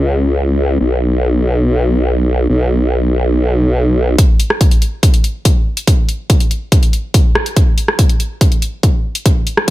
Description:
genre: heavy wobble dubstep.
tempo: 142 BPM.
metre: 4/4.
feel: half-time.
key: unclear.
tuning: A4 = 440 Hz.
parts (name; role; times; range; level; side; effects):
formant-sweep wobble bass; bass; 0.0-4.2 s; B1 to C#2; -12 LUFS; equal; chorus, overdrive.
dubstep drum kit; drums; 4.2-9.7 s; hi-hat, rim click; -17 LUFS; equal; studio ambience.
electronic kick drum; drums; 4.2-9.7 s; none; -11 LUFS; equal; studio ambience.
room: digital ambience.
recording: none.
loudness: -11 LUFS.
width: side -16 dB against mid.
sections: 0.0-4.2 A section; 4.2-9.7 B section.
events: build-up 4.2-9.7.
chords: none.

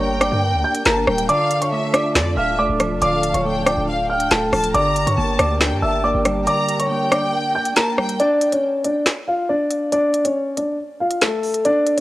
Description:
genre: hip hop, drill.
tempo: 139 BPM.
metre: 4/4.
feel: half-time.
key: D harmonic minor.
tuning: A4 = 439 Hz.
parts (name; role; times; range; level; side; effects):
dark grand piano; melody; 0.0-12.0 s; A3 to G6; -19 LUFS; equal; cassette tape.
rich studio violin section; second line; 0.0-8.2 s; D5 to Bb5; -25 LUFS; left 1 dB; tape echo.
clean electric guitar; accompaniment; 0.0-8.2 s; D3 to D5; -26 LUFS; right 2 dB; none.
breathy mellow large flute ensemble; sustained chords; 0.0-8.2 s; D4 to A5; -28 LUFS; equal; none.
hard-hitting 808-style bass; bass; 0.0-6.5 s; C#1 to G2; -24 LUFS; equal; none.
drill drum kit; drums; 0.2-12.0 s; finger snaps, hi-hat, rim click, snare drum; -20 LUFS; equal; cassette tape.
room: light reverb, studio reverb.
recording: home recording on cassette.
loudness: -16 LUFS.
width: side -16 dB against mid.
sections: 0.0-8.2 A section; 8.2-12.0 B section.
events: kick muted 1.3-2.2, 6.5-8.2, 8.2-12.0.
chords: 0.0 Gm; 1.3 Dm; 4.7 Gm; 8.2 Dm.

